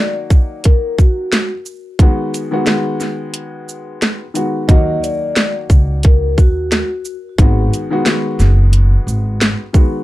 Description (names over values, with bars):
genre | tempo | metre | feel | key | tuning
hip hop, boom-bap hip-hop | 89 BPM | 4/4 | swing 58% on 16ths | Eb minor | A4 = 440 Hz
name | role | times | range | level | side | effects
vibraphone with soft mallets | melody | 0.0-6.9 s | Gb4 to Eb5 | -21 LUFS | left 2 dB | high-pass filter, low-pass filter, ping-pong delay
dark baby grand piano | accompaniment | 0.0-10.0 s | Eb3 to Gb4 | -21 LUFS | left 2 dB | high-pass filter, low-pass filter
garage drum kit | drums | 0.3-9.9 s | hi-hat, kick drum, shaker, snare drum | -12 LUFS | equal | none
upright bass | bass | 4.7-9.5 s | Gb1 to Eb2 | -14 LUFS | equal | none
room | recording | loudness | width
little or no reverb | dark, warm production | -12 LUFS | side -17 dB against mid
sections
0.0-4.7 A section; 4.7-10.0 A section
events
break 0.0-4.7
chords
0.0 Ebm; 2.0 Abm7; 4.7 Ebm; 7.4 Abm7